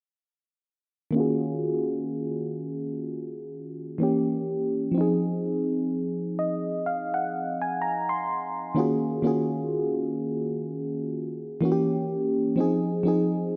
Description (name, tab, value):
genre	R&B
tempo	63 BPM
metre	4/4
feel	swing 58% on 16ths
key	Eb dorian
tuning	A4 = 440 Hz
part	mellow FM electric piano	solo	1.1-13.6 s	Eb3 to C6	-27 LUFS	equal	chorus, low-pass filter
room	moderate plate reverb, RT60 2.8 s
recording	none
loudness	-27 LUFS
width	mono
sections	1.2-8.8 A section; 8.8-13.6 B section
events	filter sweep on FM electric piano 1.2-8.8; FM electric piano fill 5.9-8.8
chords	1.2 Ebm11; 4.0 Edim7; 5.0 Fm7; 8.8 Ebm11; 11.6 Edim7; 12.6 Fm7